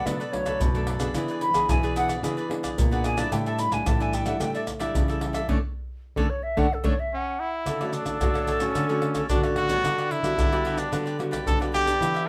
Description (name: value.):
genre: samba and choro.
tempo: 110 BPM.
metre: 4/4.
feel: straight.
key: D major.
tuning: A4 = 441 Hz.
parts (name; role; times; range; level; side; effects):
hollow concert flute; second line; 0.0-12.3 s; D4 to B5; -31 LUFS; equal; none.
cavaquinho; accompaniment; 0.0-12.3 s; D4 to E5; -37 LUFS; equal; none.
nylon-string guitar; accompaniment; 0.0-12.3 s; F#2 to G#4; -34 LUFS; equal; none.
nylon-string guitar; bass; 0.1-12.3 s; A2 to B3; -32 LUFS; equal; none.
maracas, surdo, pandeiro and tamborim; percussion; 0.1-12.3 s; none; -30 LUFS; equal; none.
clear trumpet; melody; 7.1-12.3 s; C#4 to A4; -29 LUFS; equal; none.
room: moderate studio ambience, RT60 0.5 s.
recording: none.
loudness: -25 LUFS.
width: mono.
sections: 0.0-7.7 A section; 7.7-12.3 B section.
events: flute solo 0.0-7.7; band accent 5.5-7.7.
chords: 0.0 Bm7; 1.1 E7; 3.3 A7sus4; 5.5 D5; 7.7 Dmaj7; 9.8 Gmaj7/D.